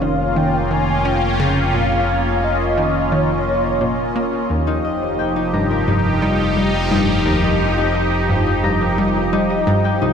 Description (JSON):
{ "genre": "ambient, sequencer-driven space music", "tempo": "87 BPM", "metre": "4/4", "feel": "straight", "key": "unclear", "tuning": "A4 = 441 Hz", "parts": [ { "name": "mellow horn-like synth lead", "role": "melody", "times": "0.0-4.2 s", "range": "Db5 to Ab5", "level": "-23 LUFS", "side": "equal", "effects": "ensemble chorus, ping-pong delay" }, { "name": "sweeping resonant pad", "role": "sustained chords", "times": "0.0-10.1 s", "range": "F3 to G4", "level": "-20 LUFS", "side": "right 1 dB", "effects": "chorus" }, { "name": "analog pluck", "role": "riff", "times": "0.0-10.1 s", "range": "C2 to Db4", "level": "-21 LUFS", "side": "equal", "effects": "chorus, ping-pong delay" }, { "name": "fat analog bass", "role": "bass", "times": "0.0-10.1 s", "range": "F1", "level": "-23 LUFS", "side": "equal", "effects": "none" }, { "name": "bubbling stepped-filter texture", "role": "texture", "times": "0.0-10.1 s", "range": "Eb5", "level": "-33 LUFS", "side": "right 3 dB", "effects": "chorus, built-in reverb" }, { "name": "concert harp", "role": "arpeggios", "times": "4.7-10.1 s", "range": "Eb4 to Bb5", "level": "-22 LUFS", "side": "left 6 dB", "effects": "auto-pan, ping-pong delay" } ], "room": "wet huge ambient reverb, RT60 7.3 s", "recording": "none", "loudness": "-15 LUFS", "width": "side -7 dB against mid", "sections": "0.0-10.1 A section", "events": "fade-in on synth texture 0.0-10.1", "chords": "0.0 Bbm/F; 4.5 Eb/F", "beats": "0.36 1.05 | 1.74 2.43 3.12 3.81 | 4.50 5.19 5.88 6.57 | 7.26 7.95 8.64 9.33 | 10.02" }